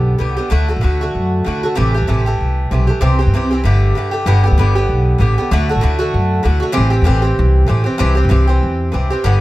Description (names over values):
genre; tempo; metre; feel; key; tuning
celtic folk, Celtic reel; 193 BPM; 4/4; swing 57% on 8ths; G major; A4 = 441 Hz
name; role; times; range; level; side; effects
Irish bouzouki; accompaniment; 0.0-9.4 s; G2 to G4; -17 LUFS; right 1 dB; none
upright bass; bass; 0.0-9.4 s; G1 to G2; -14 LUFS; equal; none
room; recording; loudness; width
light reverb; close, detailed microphones; -12 LUFS; side -17 dB against mid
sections
0.0-4.3 A section; 4.3-9.4 A section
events
break 4.0-4.3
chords
0.0 G; 0.5 D; 1.8 Am7; 3.0 C; 3.6 Gsus2; 4.3 G; 5.5 D; 6.8 Am7; 8.0 C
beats
0.21 | 0.52 0.83 1.15 1.46 | 1.77 2.08 2.40 2.71 | 3.02 3.33 3.64 3.96 | 4.27 4.58 4.89 5.20 | 5.51 5.82 6.13 6.45 | 6.76 7.07 7.38 7.69 | 8.00 8.31 8.62 8.93 | 9.24